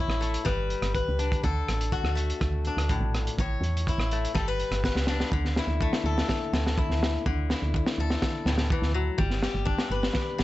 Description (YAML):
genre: highlife guitar band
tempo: 124 BPM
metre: 4/4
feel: straight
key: D major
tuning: A4 = 440 Hz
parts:
  - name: picked swing-style acoustic guitar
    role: accompaniment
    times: 0.0-10.4 s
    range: A2 to C#5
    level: -30 LUFS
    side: left 4 dB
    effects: none
  - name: woody FM bass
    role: bass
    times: 0.1-10.4 s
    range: G1 to E2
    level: -28 LUFS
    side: right 1 dB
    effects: none
  - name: crunchy breakbeat drum kit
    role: drums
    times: 0.1-10.4 s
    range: hi-hat, kick drum, rim click, snare drum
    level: -29 LUFS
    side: equal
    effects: none
room: light reverb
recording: nothing above 8.0 kHz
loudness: -24 LUFS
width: side -16 dB against mid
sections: 0.0-5.3 A section; 5.3-10.4 B section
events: drum fill 4.8-5.3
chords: 0.5 G; 1.4 D; 3.4 A; 4.4 G; 5.3 Dsus2; 9.2 G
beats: 0.46 0.95 | 1.44 1.92 2.41 2.90 | 3.38 3.87 4.35 4.84 | 5.32 5.81 6.29 6.78 | 7.26 7.74 8.22 8.71 | 9.19 9.68 10.16